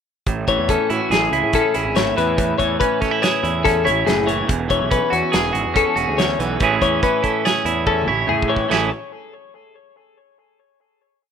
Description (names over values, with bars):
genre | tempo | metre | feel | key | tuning
math rock and midwest emo | 142 BPM | 5/4 | straight | A major | A4 = 440 Hz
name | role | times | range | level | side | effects
clean electric guitar | accompaniment | 0.3-8.9 s | E2 to G#4 | -20 LUFS | right 8 dB | none
fuzz picked electric bass | bass | 0.3-8.9 s | E1 to A2 | -25 LUFS | right 1 dB | overdrive
loose indie drum kit | drums | 0.3-8.8 s | china cymbal, hi-hat, kick drum, snare drum, toms | -23 LUFS | right 1 dB | none
twelve-string electric guitar | arpeggios | 0.5-8.9 s | F#4 to C#5 | -20 LUFS | left 9 dB | analog delay
room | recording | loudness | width
light reverb, small room ambience | rough home demo mix | -16 LUFS | side -7 dB against mid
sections
0.3-8.7 A section; 8.7-10.8 final chord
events
drum fill 7.9-8.7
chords
0.3 Amaj7; 4.5 E13; 6.6 Amaj9; 8.7 Amaj7